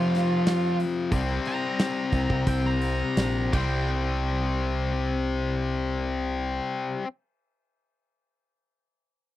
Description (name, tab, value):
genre	classic rock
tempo	81-94 BPM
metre	4/4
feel	straight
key	unclear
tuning	A4 = 440 Hz
part	octave-fuzz lead guitar	melody	0.0-3.9 s	F4 to Bb5	-33 LUFS	right 3 dB	distortion, tape echo
part	tight distorted guitar	riff	0.0-7.1 s	F2 to C4	-27 LUFS	left 4 dB	distortion
part	growling picked electric bass	bass	0.0-6.6 s	Bb1 to F3	-27 LUFS	right 1 dB	overdrive
part	big rock drum kit	drums	0.1-3.7 s	crash cymbal, hi-hat, kick drum, snare drum	-28 LUFS	right 1 dB	none
room	little or no reverb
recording	dry, close 1970s-style studio recording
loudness	-24 LUFS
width	side -14 dB against mid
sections	0.0-3.9 A section; 3.9-6.9 B section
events	slowing down 0.0-3.9; lead electric guitar solo 0.0-3.9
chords	0.0 F5; 1.1 C5